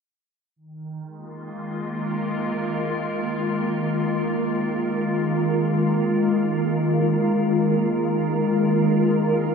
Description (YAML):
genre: ambient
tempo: free time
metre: none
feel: none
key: unclear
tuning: A4 = 440 Hz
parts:
  - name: glassy FM pad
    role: sustained chords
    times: 0.8-9.5 s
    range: Eb3 to Bb4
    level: -20 LUFS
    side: equal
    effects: ensemble chorus, built-in reverb
room: wet huge ambient reverb, RT60 7.8 s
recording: nothing above 10.8 kHz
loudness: -20 LUFS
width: side -6 dB against mid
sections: 0.6-9.5 A section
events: none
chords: 0.6 Bb7sus4